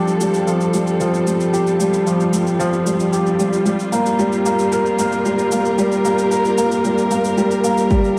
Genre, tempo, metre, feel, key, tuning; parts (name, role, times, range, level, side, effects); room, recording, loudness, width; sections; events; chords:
piano and strings electronica; 113 BPM; 4/4; straight; A4 = 440 Hz
warm studio string section; sustained chords; 0.0-8.2 s; G3 to Bb4; -26 LUFS; equal; sidechain pumping, low-pass filter
warm upright piano; riff; 0.0-8.2 s; F3 to Bb4; -18 LUFS; equal; digital delay
shaker; drums; 0.1-8.1 s; -34 LUFS; equal; studio ambience
electronic kick drum; drums; 7.9-8.0 s; -20 LUFS; equal; overdrive, studio ambience
riser; sound effects; 7.9-8.2 s; barely audible
moderate echo chamber reverb, RT60 2.5 s; -17 LUFS; mono
0.0-8.2 A section
build-up 0.0-8.2
0.0 G5; 3.7 Fsus24/G